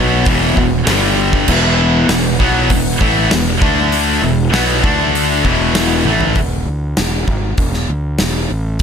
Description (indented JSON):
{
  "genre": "hard rock",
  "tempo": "98 BPM",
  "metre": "4/4",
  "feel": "straight",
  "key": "unclear",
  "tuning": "A4 = 438 Hz",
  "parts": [
    { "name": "hollow soft pad", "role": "sustained chords", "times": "0.0-6.4 s", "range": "E3 to F#5", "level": "-26 LUFS", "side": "right 1 dB", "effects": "chorus" },
    { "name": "high-gain distorted guitar", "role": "riff", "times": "0.0-6.4 s", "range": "E2 to D4", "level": "-16 LUFS", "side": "left 13 dB", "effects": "distortion" },
    { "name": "scooped high-gain guitar", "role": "riff", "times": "0.0-6.4 s", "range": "E2 to D4", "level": "-17 LUFS", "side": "right 14 dB", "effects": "distortion" },
    { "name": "fuzz fingered electric bass", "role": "bass", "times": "0.0-8.8 s", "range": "E1 to D2", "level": "-18 LUFS", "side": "equal", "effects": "overdrive" },
    { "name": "gated 80s drum kit", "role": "drums", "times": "0.3-8.8 s", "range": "crash cymbal, hi-hat, kick drum, snare drum, toms", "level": "-17 LUFS", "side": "equal", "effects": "none" }
  ],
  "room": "light reverb, small room ambience",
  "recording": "none",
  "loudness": "-12 LUFS",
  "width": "side -7 dB against mid",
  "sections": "0.0-6.4 A section; 6.4-8.8 B section",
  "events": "drum fill 6.1-6.4",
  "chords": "0.3 E5; 0.9 G5; 1.5 E5; 3.6 D5; 4.2 E5; 4.8 D5; 5.5 E5; 6.4 N.C."
}